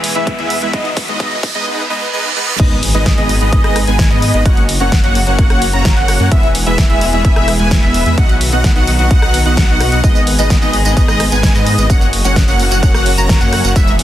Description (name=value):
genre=EDM, festival progressive house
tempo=129 BPM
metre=4/4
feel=straight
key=G# minor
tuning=A4 = 439 Hz
part: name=warm studio string section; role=sustained chords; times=0.0-14.0 s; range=C#3 to G#4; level=-23 LUFS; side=equal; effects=sidechain pumping
part: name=wide detuned saw bass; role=bass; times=0.0-14.0 s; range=E1 to G#2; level=-16 LUFS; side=equal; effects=chorus, sidechain pumping
part: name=big-room dance drum kit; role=drums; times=0.0-14.0 s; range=crash cymbal, hi-hat, rim click, snare drum, tambourine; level=-19 LUFS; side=equal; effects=high-pass filter on hats, high-pass filter on snare, high-pass filter on cymbals, high-pass filter on perc
part: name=riser, reverse cymbal and impact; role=sound effects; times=0.0-4.5 s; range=none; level=-22 LUFS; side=right 2 dB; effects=none
part: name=wide unison lead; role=arpeggios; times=0.2-13.9 s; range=D#5 to A#5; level=-19 LUFS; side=equal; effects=wide subtle chorus, sidechain pumping, dub echo
part: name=dense compressed supersaw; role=riff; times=0.2-13.9 s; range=G#3 to A#5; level=-18 LUFS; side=equal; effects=sidechain pumping, dub echo
part: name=electronic kick drum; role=drums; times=0.3-13.9 s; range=none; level=-12 LUFS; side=equal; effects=none
room=light reverb, digital ambience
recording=dense, heavily limited modern master, high-pass filter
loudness=-10 LUFS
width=side -13 dB against mid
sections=0.0-2.6 A section; 2.6-14.0 B section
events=build-up 0.0-2.6; drum fill 0.0-1.7; riser 0.0-1.7; filter sweep on analog synth lead 0.0-2.6; reverse cymbal 1.7-2.6; drop 2.6-14.0; impact 2.6-4.5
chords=0.0 E; 0.7 B; 2.6 G#m; 4.5 F#; 6.3 E; 8.2 B; 10.0 G#m; 11.9 F#